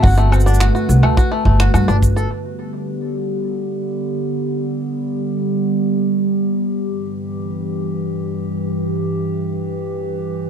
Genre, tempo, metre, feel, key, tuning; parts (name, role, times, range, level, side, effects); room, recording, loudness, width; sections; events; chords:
folktronica; free time; G major; A4 = 437 Hz
felt-muted upright piano; melody; 0.0-1.7 s; F#5; -28 LUFS; equal; tape echo
warbly tape-like pad; sustained chords; 0.0-10.5 s; G2 to B4; -20 LUFS; right 1 dB; chorus, built-in reverb
bluegrass banjo; arpeggios; 0.0-2.3 s; A3 to A4; -22 LUFS; left 2 dB; tape echo
upright bass; bass; 0.0-2.3 s; G1 to G2; -13 LUFS; equal
electronic shaker, woodblock and finger snaps; drums; 0.0-2.3 s; -25 LUFS; equal; low-pass filter on perc, low-pass filter on snare, low-pass filter on room
kick drum; drums; 0.0-2.1 s; -16 LUFS; equal
light reverb; dry, close 1970s-style studio recording; -16 LUFS; side -8 dB against mid
0.0-2.3 A section; 2.3-10.5 B section
0.0 D/G; 2.3 G; 6.8 Em/G